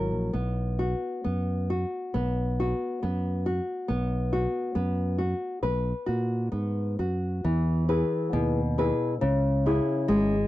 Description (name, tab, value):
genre	fado-style ballad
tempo	68 BPM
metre	2/4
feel	rubato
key	E major from 7.5 s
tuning	A4 = 435 Hz
part	nylon-string guitar	accompaniment	0.0-10.5 s	B2 to B4	-27 LUFS	left 1 dB	none
part	fingered electric bass	bass	0.0-10.5 s	G#1 to A#2	-28 LUFS	right 1 dB	none
room	little or no reverb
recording	dry, close 1970s-style studio recording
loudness	-25 LUFS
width	side -15 dB against mid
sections	0.0-7.5 A section; 7.5-10.5 B section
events	none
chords	0.3 B5; 7.5 E; 9.2 C#m